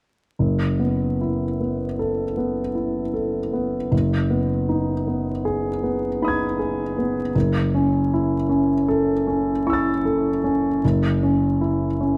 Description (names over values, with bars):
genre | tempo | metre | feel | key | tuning
classical, impressionist solo piano | 52 BPM | 3/4 | rubato | F# dorian | A4 = 442 Hz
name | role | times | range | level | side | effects
clear concert grand piano | solo | 0.4-12.2 s | F#1 to A6 | -22 LUFS | equal | none
room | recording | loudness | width
moderate scoring stage reverb, RT60 1.6 s | close, detailed microphones, vinyl crackle | -22 LUFS | mono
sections
0.4-12.2 A section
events
none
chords
0.4 F#m7; 3.9 G#m7/F#; 7.3 F#m7